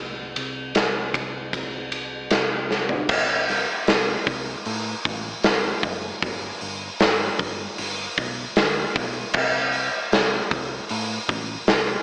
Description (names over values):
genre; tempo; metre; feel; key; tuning
rock, shoegaze and dream pop; 77 BPM; 4/4; straight; unclear; A4 = 440 Hz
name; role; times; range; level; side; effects
picked electric bass; bass; 0.0-12.0 s; F#1 to A2; -37 LUFS; equal; none
big rock drum kit; drums; 0.4-11.9 s; crash cymbal, hi-hat, kick drum, ride cymbal, snare drum, toms; -24 LUFS; equal; none
room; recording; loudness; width
moderate plate reverb, RT60 3.3 s; dreamy mix soaked in reverb, AM radio sound; -24 LUFS; mono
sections
0.0-3.1 A section; 3.1-12.0 B section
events
drum fill 2.7-3.1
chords
none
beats
0.75 1.54 2.32 | 3.10 3.89 4.67 5.45 | 6.23 7.01 7.79 8.57 | 9.35 10.13 10.90 11.68